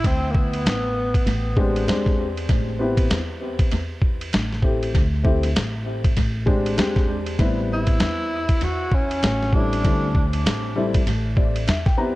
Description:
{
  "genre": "hip hop, jazz-hop",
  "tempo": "98 BPM",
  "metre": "4/4",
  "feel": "swing 59% on 16ths",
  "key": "A minor",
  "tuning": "A4 = 440 Hz",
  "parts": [
    { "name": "mellow tenor saxophone", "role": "melody", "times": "0.0-1.6, 7.7-10.5 s", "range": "Bb3 to F#4", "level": "-26 LUFS", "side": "equal", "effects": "tape echo" },
    { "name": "upright bass", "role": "bass", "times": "0.0-12.2 s", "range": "A1 to E2", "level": "-25 LUFS", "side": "equal", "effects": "none" },
    { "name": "dusty soul sampler-style drum kit", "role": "drums", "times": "0.0-12.0 s", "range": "hi-hat, kick drum, ride cymbal, snare drum", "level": "-21 LUFS", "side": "equal", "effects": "tape echo" },
    { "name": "dark upright piano", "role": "accompaniment", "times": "1.6-12.2 s", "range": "G3 to Bb5", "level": "-25 LUFS", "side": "left 2 dB", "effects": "tape echo" }
  ],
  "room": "light reverb, studio reverb",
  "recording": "echo-heavy mix",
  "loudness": "-19 LUFS",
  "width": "side -18 dB against mid",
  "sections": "0.0-12.2 A section",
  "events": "upright piano fill 11.1-12.2",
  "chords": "0.0 D7sus4; 1.9 E7alt; 2.5 Am9; 4.3 A5; 4.9 D7sus4; 6.8 E7alt; 7.4 Am9; 9.2 A7; 9.8 D7sus4"
}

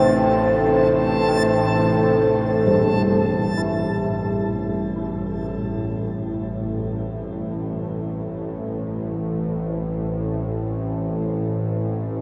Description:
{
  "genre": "dark ambient drone",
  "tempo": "free time",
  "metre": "none",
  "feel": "none",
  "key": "A minor",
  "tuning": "A4 = 440 Hz",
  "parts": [
    { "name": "deep dark ambient pad", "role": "sustained chords", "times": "0.0-12.2 s", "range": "E3 to C5", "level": "-26 LUFS", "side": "equal", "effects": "chorus, built-in reverb, shimmer reverb" },
    { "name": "old church bells", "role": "arpeggios", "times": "0.0-9.1 s", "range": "G2 to E4", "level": "-26 LUFS", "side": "equal", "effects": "analog delay" },
    { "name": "bowed-like drone", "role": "drone", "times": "0.0-12.2 s", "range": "A1 to A2", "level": "-28 LUFS", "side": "equal", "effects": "built-in reverb" },
    { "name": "backwards swelling texture", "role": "texture", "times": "0.0-3.6 s", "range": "A5", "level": "-33 LUFS", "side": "equal", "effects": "built-in reverb, shimmer reverb" }
  ],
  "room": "wet plate reverb, RT60 3.6 s",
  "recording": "echo-heavy mix",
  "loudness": "-22 LUFS",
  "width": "mono",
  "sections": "0.0-3.6 A section; 3.6-12.2 B section",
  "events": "none",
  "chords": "0.0 Am"
}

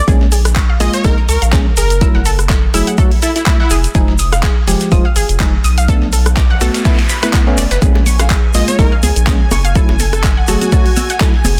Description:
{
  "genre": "deep house",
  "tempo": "124 BPM",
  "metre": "4/4",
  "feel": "swing 55% on 16ths",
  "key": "unclear",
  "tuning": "A4 = 440 Hz",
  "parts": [
    { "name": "analog pluck", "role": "arpeggios", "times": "0.0-11.5 s", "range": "Ab4 to Fb6", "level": "-25 LUFS", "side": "equal", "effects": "chorus, cassette tape, sidechain pumping, tape echo" },
    { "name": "tine electric piano", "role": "stabs", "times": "0.1-11.3 s", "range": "F3 to Ab4", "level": "-22 LUFS", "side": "equal", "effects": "vintage 12-bit sampler grit, sidechain pumping, tape echo" },
    { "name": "round analog bass", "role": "bass", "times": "0.1-11.6 s", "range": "Eb1 to Db2", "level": "-17 LUFS", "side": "equal", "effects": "sidechain pumping" },
    { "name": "deep house drum kit", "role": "drums", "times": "0.1-11.6 s", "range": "handclaps, hi-hat, rim click", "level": "-24 LUFS", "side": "equal", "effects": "none" },
    { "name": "dusty soul sampler-style drum kit", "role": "drums", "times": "0.1-11.6 s", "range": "hi-hat, snare drum", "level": "-31 LUFS", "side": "equal", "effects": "none" },
    { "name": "electronic kick drum", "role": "drums", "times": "0.1-11.3 s", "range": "none", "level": "-15 LUFS", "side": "equal", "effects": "none" },
    { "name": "tube shaker", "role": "percussion", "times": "0.1-11.6 s", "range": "none", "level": "-27 LUFS", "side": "equal", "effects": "none" },
    { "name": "plucky unison lead", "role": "melody", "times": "0.8-3.8, 8.5-11.3 s", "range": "Fb4 to Eb5", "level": "-23 LUFS", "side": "equal", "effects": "tape echo" },
    { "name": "noise sweep", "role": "sound effects", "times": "6.2-7.8 s", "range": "none", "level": "-29 LUFS", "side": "equal", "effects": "none" },
    { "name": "string machine, violins", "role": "texture", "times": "7.8-11.6 s", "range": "Ab5", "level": "-29 LUFS", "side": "equal", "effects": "ensemble chorus, sidechain pumping" },
    { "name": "bongos and congas", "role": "percussion", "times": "8.0-11.6 s", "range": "none", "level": "-24 LUFS", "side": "equal", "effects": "sidechain pumping on perc" }
  ],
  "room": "digital ambience",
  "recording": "dense, heavily limited modern master",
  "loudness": "-13 LUFS",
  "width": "mono",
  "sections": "0.0-11.6 A section",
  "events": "noise sweep 6.2-7.8",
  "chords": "0.1 Bbm7; 2.0 Gbm7; 3.7 Fm7; 5.9 Bm7; 7.8 Bbm7; 9.8 Gbm7"
}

